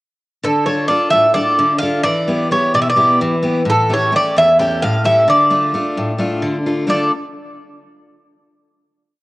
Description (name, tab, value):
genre	greek folk, Greek bouzouki band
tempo	260 BPM (eighths)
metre	7/8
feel	straight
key	D harmonic minor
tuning	A4 = 440 Hz
part	Greek bouzouki	melody	0.4-7.1 s	A4 to G5	-14 LUFS	equal	none
part	picked steel-string acoustic guitar	accompaniment	0.4-7.1 s	E2 to A4	-18 LUFS	left 1 dB	cassette tape
room	moderate lush hall reverb, RT60 2.3 s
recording	home recording on cassette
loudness	-13 LUFS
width	side -20 dB against mid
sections	0.4-6.9 A section; 6.9-8.5 final chord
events	none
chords	0.4 Dm; 2.0 Em; 3.7 A7; 5.3 Dm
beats	| 0.42 0.66 0.89 1.12 1.35 1.58 1.81 | 2.04 2.27 2.51 2.74 2.97 3.20 3.43 | 3.66 3.90 4.13 4.36 4.59 4.82 5.05 | 5.28 5.51 5.74 5.97 6.21 6.44 6.67 | 6.90